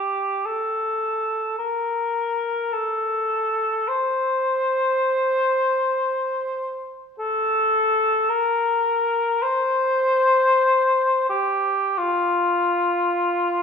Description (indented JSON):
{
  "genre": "classical, free, expressive piece for unaccompanied cor anglais",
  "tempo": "free time",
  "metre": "none",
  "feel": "none",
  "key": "unclear",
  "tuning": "A4 = 440 Hz",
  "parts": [
    { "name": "mellow cor anglais", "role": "solo", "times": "0.0-13.6 s", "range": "F4 to C5", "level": "-19 LUFS", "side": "left 1 dB", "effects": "none" }
  ],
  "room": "wet scoring stage reverb, RT60 1.8 s",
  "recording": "small room ambience",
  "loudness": "-19 LUFS",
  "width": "side -6 dB against mid",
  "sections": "0.0-13.6 A section",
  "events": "none",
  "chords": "none"
}